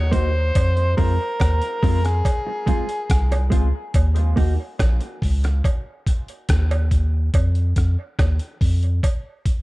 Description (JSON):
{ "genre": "dub reggae", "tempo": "71 BPM", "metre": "4/4", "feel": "straight", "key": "unclear", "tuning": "A4 = 440 Hz", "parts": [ { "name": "overdriven harmonica", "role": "melody", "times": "0.0-3.5 s", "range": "Ab4 to Db5", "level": "-26 LUFS", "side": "equal", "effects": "dub echo" }, { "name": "soft dub sub bass", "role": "bass", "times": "0.0-9.0 s", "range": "Bb1 to F2", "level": "-18 LUFS", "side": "equal", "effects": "none" }, { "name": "mellow electric guitar", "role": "accompaniment", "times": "0.1-4.5 s", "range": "Ab3 to Gb4", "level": "-29 LUFS", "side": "right 2 dB", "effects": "dub echo" }, { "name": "trip hop sampler-style drum kit", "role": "drums", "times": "0.1-9.6 s", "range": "hi-hat, kick drum, rim click", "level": "-21 LUFS", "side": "equal", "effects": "none" }, { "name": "cowbell", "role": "percussion", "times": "0.6-9.2 s", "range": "none", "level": "-34 LUFS", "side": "right 5 dB", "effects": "dub echo" } ], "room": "light reverb", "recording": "dark, warm production", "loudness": "-18 LUFS", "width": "side -20 dB against mid", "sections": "0.0-9.6 A section", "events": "none", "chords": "0.0 Ebm; 0.6 Fm; 3.9 N.C.; 7.3 F5" }